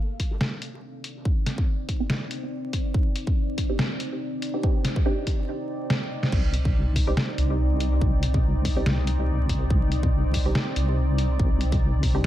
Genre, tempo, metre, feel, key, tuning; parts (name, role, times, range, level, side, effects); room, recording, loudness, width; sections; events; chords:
deep dubstep; 142 BPM; 4/4; swing 55% on 16ths, half-time; C minor; A4 = 440 Hz
deep dark ambient pad; sustained chords; 0.0-12.3 s; C4 to D5; -32 LUFS; equal; chorus, built-in reverb
electronic kick drum; drums; 0.2-12.1 s; -24 LUFS; equal
trip hop sampler-style drum kit; drums; 0.2-12.3 s; crash cymbal, hi-hat, snare drum; -28 LUFS; equal
filtered dub chord stab; stabs; 0.3-12.2 s; C4 to G4; -33 LUFS; right 2 dB; phaser, dub echo
deep soft wobble bass; bass; 6.3-12.2 s; C2; -23 LUFS; equal; chorus, tube saturation
light reverb, digital ambience; vinyl crackle; -22 LUFS; side -13 dB against mid
0.0-6.3 A section; 6.3-12.3 B section
build-up 0.0-6.3; filter sweep on synth stab 0.0-6.3; filter sweep on ambient pad 0.0-6.3; break 5.5-6.3; drum fill 5.9-6.3; drop 6.3-12.3
0.0 Cmadd9